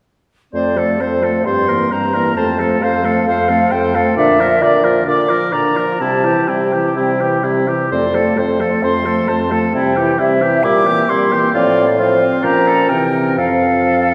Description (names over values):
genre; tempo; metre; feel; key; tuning
quick classical-period movement for wind quintet; 132 BPM; 4/4; rubato; F major; A4 = 441 Hz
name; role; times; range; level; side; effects
silver concert flute; melody; 0.5-14.1 s; C5 to D6; -20 LUFS; equal; none
warm oboe; second line; 0.5-14.1 s; E4 to D5; -22 LUFS; equal; none
warm French horn; accompaniment; 0.5-14.1 s; D3 to A3; -23 LUFS; equal; none
warm clarinet; accompaniment; 0.5-14.1 s; A3 to F4; -24 LUFS; equal; none
mellow bassoon; bass; 0.5-14.1 s; F2 to C3; -21 LUFS; equal; none
room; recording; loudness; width
wet church reverb, RT60 2.7 s; recorded in a church or concert hall; -15 LUFS; mono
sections
0.5-14.1 A section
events
none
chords
0.5 F; 1.5 C7/G; 2.4 F; 4.2 Bb; 6.0 C; 7.9 F; 9.7 C; 10.6 C7/Bb; 11.5 F/A; 12.4 Gm7b5/Bb; 12.9 C7; 13.4 F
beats
| 0.53 0.99 1.45 1.92 | 2.37 2.82 3.27 3.72 | 4.17 4.62 5.07 5.53 | 6.00 6.48 6.96 7.44 | 7.91 8.38 8.83 9.29 | 9.74 10.19 10.64 11.09 | 11.54 11.98 12.43 12.90 | 13.38 13.87